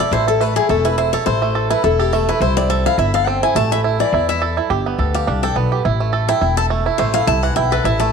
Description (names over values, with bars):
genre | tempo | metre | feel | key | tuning
bluegrass | 210 BPM | 4/4 | swing 55% on 8ths | A minor | A4 = 440 Hz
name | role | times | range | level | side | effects
bluegrass banjo | melody | 0.0-8.1 s | E3 to A4 | -18 LUFS | right 10 dB | none
picked steel-string acoustic guitar | accompaniment | 0.0-8.1 s | G4 to A5 | -19 LUFS | left 12 dB | none
upright bass | bass | 0.1-8.1 s | E1 to E2 | -20 LUFS | left 1 dB | none
room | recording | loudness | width
moderate plate reverb, RT60 2.8 s | 1960s-style stereo with parts hard left and right | -15 LUFS | side -6 dB against mid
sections
0.0-8.1 A section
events
steel-string acoustic guitar solo 0.0-8.1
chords
0.0 Am; 2.4 C; 3.6 A5; 4.7 G; 5.8 Am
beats
| 0.12 0.40 0.69 0.98 | 1.26 1.55 1.84 2.12 | 2.41 2.70 2.98 3.27 | 3.56 3.84 4.13 4.42 | 4.70 4.99 5.27 5.56 | 5.84 6.13 6.42 6.70 | 6.99 7.28 7.56 7.85